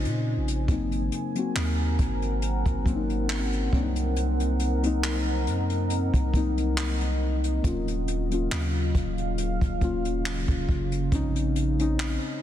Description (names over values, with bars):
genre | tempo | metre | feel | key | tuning
contemporary R&B | 69 BPM | 4/4 | swing 54% on 16ths | unclear | A4 = 440 Hz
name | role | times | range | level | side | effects
muted felt-like synth keys | accompaniment | 0.0-12.4 s | Gb3 to Gb4 | -30 LUFS | left 4 dB | chorus
deep dark ambient pad | sustained chords | 0.0-12.4 s | Db3 to Ab5 | -32 LUFS | right 2 dB | chorus, built-in reverb
long sustained 808-style bass | bass | 0.0-12.2 s | Eb1 to Bb2 | -27 LUFS | equal | none
jazz brush drum kit | drums | 0.0-12.2 s | handclaps, hi-hat, kick drum | -29 LUFS | equal | vintage 12-bit sampler grit
room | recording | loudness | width
light reverb, studio ambience | dense, heavily limited modern master | -24 LUFS | side -11 dB against mid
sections
0.0-12.4 A section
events
none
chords
0.0 Bbm11; 0.7 Ab9; 3.7 Cm7b5; 7.6 Ebm9; 11.1 Bbm11